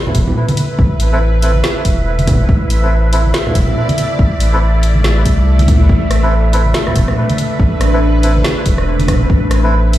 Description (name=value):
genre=deep dubstep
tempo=141 BPM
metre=4/4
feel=swing 59% on 16ths, half-time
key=A minor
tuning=A4 = 440 Hz
part: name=bowed-like drone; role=sustained chords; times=0.0-10.0 s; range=A3 to D5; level=-20 LUFS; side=left 1 dB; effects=built-in reverb, phaser
part: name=wind-like tuned noise texture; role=texture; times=0.1-10.0 s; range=E5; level=-25 LUFS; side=right 6 dB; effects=built-in reverb
part: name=saturated sub bass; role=bass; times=0.1-10.0 s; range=E1 to D2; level=-13 LUFS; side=equal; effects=none
part: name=deep house drum kit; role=drums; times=0.1-10.0 s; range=hi-hat, rim click, snare drum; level=-21 LUFS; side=left 1 dB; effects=none
part: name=electronic kick drum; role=drums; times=0.1-9.4 s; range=none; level=-14 LUFS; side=equal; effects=none
part: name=congas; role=percussion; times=0.1-9.2 s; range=none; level=-18 LUFS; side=right 1 dB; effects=dub echo
part: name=melodica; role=stabs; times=1.1-9.7 s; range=C4 to B4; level=-22 LUFS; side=equal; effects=dub echo
room=light reverb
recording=played on a big sound system in a bare room, stone room reverb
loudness=-11 LUFS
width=side -14 dB against mid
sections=0.0-10.0 A section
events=none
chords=0.0 Amadd9